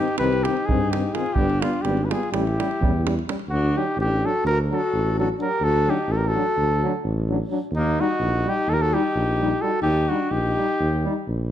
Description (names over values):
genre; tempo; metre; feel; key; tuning
balkan folk, Balkan brass band; 255 BPM (eighths); 9/8; straight; unclear; A4 = 439 Hz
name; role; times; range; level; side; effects
warm flugelhorn; melody; 0.0-11.3 s; Eb4 to B4; -24 LUFS; equal; none
mellow alto saxophone; second line; 0.0-11.3 s; Bb3 to G4; -27 LUFS; left 4 dB; slapback echo
clear euphonium; accompaniment; 0.0-11.1 s; Eb3 to G3; -32 LUFS; right 6 dB; none
warm French horn; accompaniment; 0.0-11.2 s; B3 to Eb4; -31 LUFS; left 6 dB; none
davul; percussion; 0.1-3.4 s; none; -28 LUFS; right 2 dB; none
mellow tuba; bass; 0.2-11.5 s; G1 to G2; -25 LUFS; equal; none
room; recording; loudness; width
light reverb; none; -20 LUFS; side -11 dB against mid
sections
0.0-3.5 A section; 3.5-11.5 B section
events
none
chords
0.0 Cm; 1.4 G; 2.3 A7; 3.5 D; 7.7 Eb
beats
0.18 0.42 0.66 0.89 1.13 | 1.37 1.60 1.84 2.08 2.31 2.55 2.78 3.02 3.25 | 3.49 3.73 3.96 4.20 4.43 4.67 4.90 5.14 5.37 | 5.61 5.84 6.07 6.31 6.54 6.78 7.01 7.25 7.48 | 7.72 7.95 8.19 8.42 8.66 8.89 9.13 9.36 9.60 | 9.83 10.07 10.30 10.54 10.77 11.01 11.24 11.48